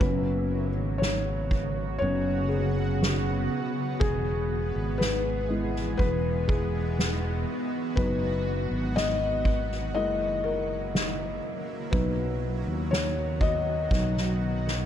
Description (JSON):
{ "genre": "pop ballad", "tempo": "60 BPM", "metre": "4/4", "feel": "straight", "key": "B major", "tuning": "A4 = 440 Hz", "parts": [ { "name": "felt-muted upright piano", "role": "accompaniment", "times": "0.0-14.9 s", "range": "F#3 to D#5", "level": "-30 LUFS", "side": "left 3 dB", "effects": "none" }, { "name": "granular cloud pad", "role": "sustained chords", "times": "0.0-14.9 s", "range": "C#3 to G#4", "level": "-33 LUFS", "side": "right 2 dB", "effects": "built-in reverb" }, { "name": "fretless electric bass", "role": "bass", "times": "0.0-14.9 s", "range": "E1 to D#2", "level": "-30 LUFS", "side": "right 1 dB", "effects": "none" }, { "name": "soft-mallet drum kit", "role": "drums", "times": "0.0-14.9 s", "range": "kick drum, ride cymbal, snare drum", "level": "-31 LUFS", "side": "right 1 dB", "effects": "none" } ], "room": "small room ambience", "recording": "dark, warm production", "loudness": "-25 LUFS", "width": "side -10 dB against mid", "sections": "0.0-14.9 A section", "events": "felt piano solo 0.0-14.9; drum fill 13.9-14.9", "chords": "0.0 F#sus4; 4.0 E; 8.0 B/F#; 10.0 F#7; 11.9 B" }